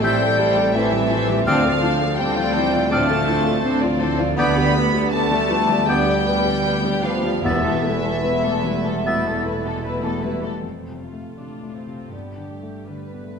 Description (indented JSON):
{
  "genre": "cinematic, emotional film score for orchestra",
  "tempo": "74-84 BPM",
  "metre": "4/4",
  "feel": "rubato",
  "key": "unclear",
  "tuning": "A4 = 439 Hz",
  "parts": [
    { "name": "rich studio violin section", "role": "melody", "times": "0.0-13.4 s", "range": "A4 to B5", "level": "-25 LUFS", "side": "left 1 dB", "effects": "none" },
    { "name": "bright silver concert flute", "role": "second line", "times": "0.0-9.4 s", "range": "F6 to A6", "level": "-27 LUFS", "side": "left 2 dB", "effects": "none" },
    { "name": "rich studio violin section", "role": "second line", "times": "0.0-13.4 s", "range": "C4 to D5", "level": "-28 LUFS", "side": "left 3 dB", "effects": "none" },
    { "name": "warm clarinet", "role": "second line", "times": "0.0-9.4 s", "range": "B3 to C4", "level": "-28 LUFS", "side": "left 1 dB", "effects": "none" },
    { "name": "warm oboe", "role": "second line", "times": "0.0-9.4 s", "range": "D5 to E5", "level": "-29 LUFS", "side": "right 4 dB", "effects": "none" },
    { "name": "felt-muted upright piano", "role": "accompaniment", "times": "0.0-13.4 s", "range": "D2 to A4", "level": "-26 LUFS", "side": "left 2 dB", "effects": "none" },
    { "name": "warm studio viola section", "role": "accompaniment", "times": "0.0-13.4 s", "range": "E3 to E4", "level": "-28 LUFS", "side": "right 2 dB", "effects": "none" },
    { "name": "mellow French horn section", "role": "sustained chords", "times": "0.0-9.8 s", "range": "E3 to B3", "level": "-24 LUFS", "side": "left 2 dB", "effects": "none" },
    { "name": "warm studio cello section", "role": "bass", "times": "0.0-13.4 s", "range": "D2 to A2", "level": "-29 LUFS", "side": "right 2 dB", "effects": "none" },
    { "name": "warm studio double bass section", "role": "bass", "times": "0.0-13.4 s", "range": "E1 to D2", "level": "-28 LUFS", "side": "right 5 dB", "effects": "none" },
    { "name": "timpani", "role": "percussion", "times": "7.5-8.6 s", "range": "E2", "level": "-28 LUFS", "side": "left 1 dB", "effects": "none" }
  ],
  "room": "wet scoring stage reverb, RT60 1.6 s",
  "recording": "minimal, uncompressed stereo recording",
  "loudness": "-17 LUFS",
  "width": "side -6 dB against mid",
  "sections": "0.0-10.6 A section; 10.6-13.4 B section",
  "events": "none",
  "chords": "0.0 Am7; 1.5 Dm7; 4.4 G/D; 7.4 Esus4; 10.6 F; 12.1 Gadd9"
}